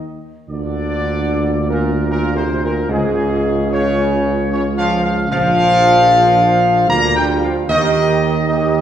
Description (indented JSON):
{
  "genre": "classical",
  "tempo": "75 BPM",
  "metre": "3/4",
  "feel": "straight",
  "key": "Bb major",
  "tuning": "A4 = 443 Hz",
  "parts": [
    { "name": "dark trumpet section", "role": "melody", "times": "0.0-8.8 s", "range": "Ab4 to Bb5", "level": "-16 LUFS", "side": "left 1 dB", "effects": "none" },
    { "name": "clear trombone section", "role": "sustained chords", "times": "0.0-8.8 s", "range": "Ab2 to Bb3", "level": "-21 LUFS", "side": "right 2 dB", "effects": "none" },
    { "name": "warm French horn section", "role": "sustained chords", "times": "0.0-8.8 s", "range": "Bb3 to G4", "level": "-22 LUFS", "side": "equal", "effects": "none" },
    { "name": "mellow tuba", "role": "bass", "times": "0.0-8.8 s", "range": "Bb1 to Eb2", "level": "-19 LUFS", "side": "right 2 dB", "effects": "none" }
  ],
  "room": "wet scoring stage reverb, RT60 1.5 s",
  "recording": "heard from further back in the room",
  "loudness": "-13 LUFS",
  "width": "side -10 dB against mid",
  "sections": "0.0-8.8 A section",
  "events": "none",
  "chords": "0.5 Bb/D; 2.9 Db; 5.3 Bb; 7.7 Eb"
}